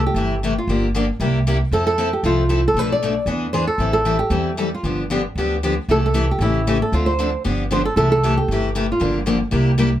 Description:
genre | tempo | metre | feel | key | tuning
acoustic string swing (jazz manouche) | 230 BPM | 4/4 | swing 56% on 8ths | C major | A4 = 439 Hz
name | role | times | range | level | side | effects
flamenco guitar | melody | 0.0-9.1 s | E4 to D5 | -20 LUFS | right 1 dB | plate reverb
upright bass | bass | 0.0-9.9 s | G1 to F2 | -21 LUFS | right 1 dB | none
picked steel-string acoustic guitar | accompaniment | 0.2-9.9 s | B2 to A4 | -21 LUFS | left 3 dB | none
room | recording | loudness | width
moderate club reverb, RT60 0.5 s | none | -17 LUFS | side -12 dB against mid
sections
0.0-8.0 A section; 8.0-10.0 A section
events
none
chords
0.0 C6; 0.7 Gm7; 1.2 C7; 1.7 Fmaj7; 2.8 Bm7b5; 3.3 E7; 3.8 Am7; 4.8 G7; 5.9 C6; 6.4 A7; 6.9 Dm7; 7.4 G7; 8.0 C6; 9.0 Gm7

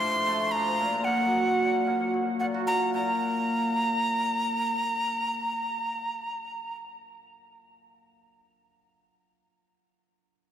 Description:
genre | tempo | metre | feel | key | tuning
folktronica | 112 BPM | 4/4 | straight | unclear | A4 = 436 Hz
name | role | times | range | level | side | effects
breathy bright jazz flute | melody | 0.0-6.8 s | Gb5 to C6 | -27 LUFS | equal | diffuse ambient delay
cimbalom | arpeggios | 0.0-8.1 s | A2 to Gb4 | -29 LUFS | equal | vintage 12-bit sampler grit, diffuse ambient delay
room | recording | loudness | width
wet lush hall reverb, RT60 2.5 s | dreamy mix soaked in reverb | -25 LUFS | side -9 dB against mid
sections
0.0-2.9 A section; 2.9-7.2 B section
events
none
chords
0.0 F; 0.8 Gb/Bb; 2.9 N.C.

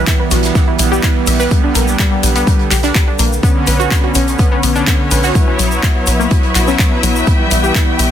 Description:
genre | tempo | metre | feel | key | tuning
melodic techno | 125 BPM | 4/4 | straight | B minor | A4 = 436 Hz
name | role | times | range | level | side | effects
brassy analog pad | stabs | 0.0-8.1 s | D3 to E4 | -19 LUFS | right 3 dB | chorus, sidechain pumping, dub echo
tight sequencer bass | bass | 0.0-8.1 s | B1 | -16 LUFS | equal | sidechain pumping
deep dark ambient pad | texture | 0.0-8.1 s | D3 to C#6 | -27 LUFS | left 1 dB | chorus, built-in reverb, sidechain pumping
analog pluck | arpeggios | 0.1-8.1 s | F#3 to E5 | -19 LUFS | left 2 dB | chorus, sidechain pumping, dub echo
deep house drum kit | drums | 0.1-8.1 s | handclaps, hi-hat | -20 LUFS | left 2 dB | sidechain pumping on hats, studio reverb
electronic kick drum | drums | 0.1-7.9 s | none | -13 LUFS | equal | studio reverb
loose indie drum kit | drums | 0.1-8.1 s | hi-hat, snare drum | -28 LUFS | right 3 dB | none
egg shaker | percussion | 0.1-8.1 s | none | -26 LUFS | left 2 dB | none
muted studio string section | sustained chords | 3.4-8.1 s | B3 to G5 | -21 LUFS | left 2 dB | sidechain pumping
room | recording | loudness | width
small room ambience | dense, heavily limited modern master | -10 LUFS | side -10 dB against mid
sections
0.0-8.1 A section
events
filter sweep on synth pluck 0.0-8.1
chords
0.0 Em/B; 1.5 G/B; 3.4 Bmadd9; 5.4 F#7sus4/B; 7.3 Em/B

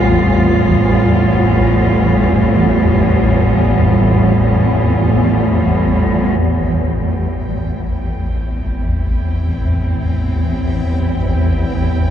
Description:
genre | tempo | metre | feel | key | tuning
dark ambient drone | free time | none | none | A minor | A4 = 440 Hz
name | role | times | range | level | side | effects
rich symphonic cello section | sustained chords | 0.0-12.1 s | A2 to F4 | -15 LUFS | equal | none
swarming drone | drone | 0.0-12.1 s | A1 to E2 | -15 LUFS | equal | built-in reverb
bubbling stepped-filter texture | texture | 6.6-12.1 s | G5 | -34 LUFS | right 1 dB | chorus, built-in reverb
room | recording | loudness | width
wet huge ambient reverb, RT60 8.2 s | dark, warm production | -12 LUFS | side -9 dB against mid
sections
0.0-6.4 A section; 6.4-12.1 B section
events
fade-in on cello section 6.4-12.1; fade-in on synth texture 6.4-12.1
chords
0.0 Fmaj9/A; 6.4 Am

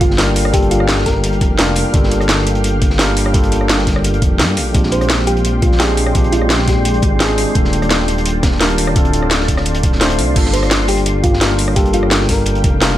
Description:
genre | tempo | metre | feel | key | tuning
liquid drum and bass | 171 BPM | 4/4 | straight | G minor | A4 = 441 Hz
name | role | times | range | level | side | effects
thumb-piano-like synth pluck | melody | 0.0-1.3, 4.9-7.2, 10.5-12.6 s | F4 to C5 | -21 LUFS | equal | chorus, dub echo
tine electric piano | accompaniment | 0.0-13.0 s | G3 to C5 | -19 LUFS | equal | tape echo
shimmering ambient pad | sustained chords | 0.0-13.0 s | Ab3 to C6 | -24 LUFS | left 1 dB | chorus, built-in reverb, sidechain pumping
dark detuned saw bass | bass | 0.0-13.0 s | D1 to G2 | -17 LUFS | equal | none
crunchy breakbeat drum kit | drums | 0.0-12.9 s | hi-hat, snare drum | -25 LUFS | equal | high-pass filter on hats, high-pass filter on snare, high-pass filter on room
drum and bass drum kit | drums | 0.0-12.9 s | crash cymbal, hi-hat, rim click, snare drum | -18 LUFS | equal | none
electronic kick drum | drums | 0.0-12.7 s | none | -16 LUFS | equal | none
room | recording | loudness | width
light reverb, digital ambience | none | -12 LUFS | side -13 dB against mid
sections
0.0-10.4 A section; 10.4-13.0 A section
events
drop 0.0-10.4, 10.4-13.0; kick drops out 10.0-10.4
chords
0.0 Gm7; 4.7 Bb13; 7.6 Ebmaj9#11; 9.0 Dm7; 10.4 Gm7

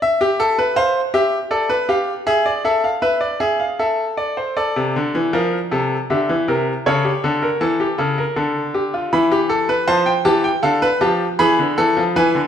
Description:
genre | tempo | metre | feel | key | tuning
classical, baroque-style 3-part fugue for grand piano | 79 BPM | 3/4 | straight | D minor | A4 = 442 Hz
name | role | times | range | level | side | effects
bright grand piano | solo | 0.0-12.5 s | C3 to B5 | -16 LUFS | equal | none
room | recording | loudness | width
moderate recital hall reverb, RT60 1.6 s | minimal, uncompressed stereo recording | -16 LUFS | side -8 dB against mid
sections
0.0-4.6 A section; 4.6-12.5 B section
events
none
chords
0.0 Am (rootless); 1.5 Bm7b5/A; 2.3 E/G#; 3.8 Am; 4.6 Dm; 6.1 Em7b5/D; 6.9 A/C#; 8.4 Dm; 9.1 Am/E; 10.6 Bm7b5/D; 11.4 E

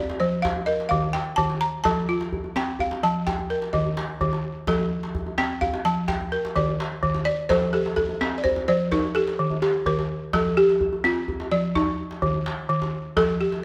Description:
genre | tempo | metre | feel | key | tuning
west african traditional, West African string and xylophone music | 85 BPM (dotted quarters) | 12/8 | straight | F mixolydian | A4 = 440 Hz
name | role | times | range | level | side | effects
balafon | melody | 0.0-13.6 s | F4 to Bb5 | -27 LUFS | equal | none
balafon | arpeggios | 0.0-13.6 s | Eb3 to D5 | -27 LUFS | equal | none
djembe | percussion | 0.1-13.6 s | none | -33 LUFS | equal | none
room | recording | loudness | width
moderate recital hall reverb, RT60 1.7 s | close, detailed microphones | -24 LUFS | mono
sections
0.0-7.5 A section; 7.5-13.6 B section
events
balafon solo 0.0-7.5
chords
0.4 Eb5; 1.9 F; 3.3 Eb; 4.7 F; 6.1 Eb; 7.5 F; 8.9 Eb; 10.3 F; 11.8 N.C.

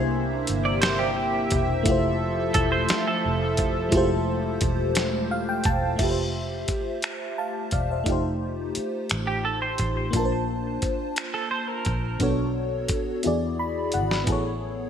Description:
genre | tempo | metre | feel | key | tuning
slow six-eight R&B | 58 BPM (dotted quarters) | 6/8 | straight | F major | A4 = 440 Hz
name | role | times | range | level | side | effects
FM electric piano with soft pad layer | accompaniment | 0.0-14.9 s | Ab3 to B5 | -26 LUFS | left 1 dB | chorus, phaser
warm analog pad | sustained chords | 0.0-6.0 s | C3 to E5 | -30 LUFS | right 1 dB | chorus
vintage muted fingered electric bass | bass | 0.0-14.9 s | E1 to E2 | -29 LUFS | equal | none
dusty soul sampler-style drum kit | drums | 0.5-14.4 s | crash cymbal, finger snaps, hi-hat, kick drum, snare drum | -27 LUFS | equal | gated reverb
semi-hollow electric guitar | second line | 0.7-4.1, 9.3-12.2 s | G4 to D5 | -29 LUFS | right 3 dB | analog chorus, ping-pong delay
room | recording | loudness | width
moderate plate reverb, RT60 2.8 s | bright 1980s-style digital production | -22 LUFS | side -8 dB against mid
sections
0.0-6.0 A section; 6.0-14.9 B section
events
FM electric piano fill 5.0-6.0, 13.2-14.3; drum fill 13.2-14.3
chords
0.0 C7; 1.9 Fmaj7; 8.1 F7; 10.1 Bbmaj7; 12.2 Bm7; 13.2 E7; 14.3 Amaj7

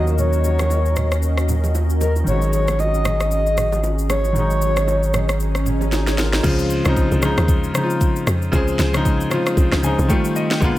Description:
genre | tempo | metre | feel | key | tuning
amapiano | 115 BPM | 4/4 | swing 58% on 16ths | Db major | A4 = 440 Hz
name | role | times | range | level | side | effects
breathy flute-like synth lead | melody | 0.0-5.4 s | Bb4 to Eb5 | -23 LUFS | equal | chorus, low-pass filter, tape echo
clear concert grand piano | accompaniment | 0.0-10.8 s | Db3 to Ab5 | -22 LUFS | left 1 dB | low-pass filter
hollow soft pad | sustained chords | 0.0-6.4 s | Db4 to Eb5 | -29 LUFS | left 1 dB | ensemble chorus, sidechain pumping, low-pass filter
round analog bass | bass | 0.0-6.4 s | Ab1 to Eb2 | -20 LUFS | equal | none
afro-pop drum kit | drums | 0.1-10.8 s | crash cymbal, kick drum, rim click, shaker, snare drum | -22 LUFS | equal | none
bongos and congas | percussion | 0.1-6.4 s | none | -29 LUFS | right 4 dB | none
swell | sound effects | 5.1-6.4 s | none | -31 LUFS | right 3 dB | none
tight log drum bass | bass | 6.4-10.8 s | Bb1 to F2 | -21 LUFS | equal | none
room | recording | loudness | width
light reverb | none | -16 LUFS | side -15 dB against mid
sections
0.0-6.4 A section; 6.4-10.8 B section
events
swell 5.1-6.4; drum fill 5.9-6.4; drop 6.4-10.8; grand piano fill 9.6-10.6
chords
0.0 Ebm7; 2.3 Ab7sus4; 6.4 Dbmaj7; 10.1 F9

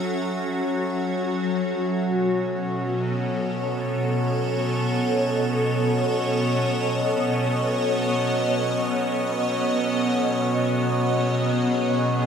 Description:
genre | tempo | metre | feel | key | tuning
ambient | free time | none | none | unclear | A4 = 436 Hz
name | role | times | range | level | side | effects
evolving wavetable pad | sustained chords | 0.0-12.3 s | B2 to E5 | -22 LUFS | equal | ensemble chorus, built-in reverb, phaser
pedal harmonium | drone | 0.0-12.3 s | F#3 to C#4 | -28 LUFS | equal | none
room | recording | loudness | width
wet huge ambient reverb, RT60 7.8 s | none | -21 LUFS | side -7 dB against mid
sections
0.0-12.3 A section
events
fade-in on harmonium 0.0-12.3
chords
0.0 F#m7; 2.0 B7

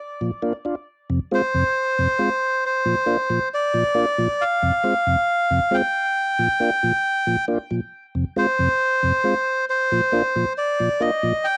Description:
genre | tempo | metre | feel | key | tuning
reggae | 68 BPM | 4/4 | straight | F dorian | A4 = 440 Hz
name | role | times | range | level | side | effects
mellow tonewheel organ | accompaniment | 0.2-11.3 s | F2 to F4 | -24 LUFS | equal | slow rotary speaker
melodica | melody | 1.3-11.6 s | C5 to G5 | -22 LUFS | equal | cassette tape, tape echo
room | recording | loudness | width
moderate booth ambience, RT60 0.2 s | home recording on cassette | -21 LUFS | mono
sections
0.9-11.6 A section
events
none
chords
0.0 Bb; 0.9 Fm; 2.6 Bb; 4.4 Fm; 6.2 Bb; 7.9 Fm; 9.7 Bb

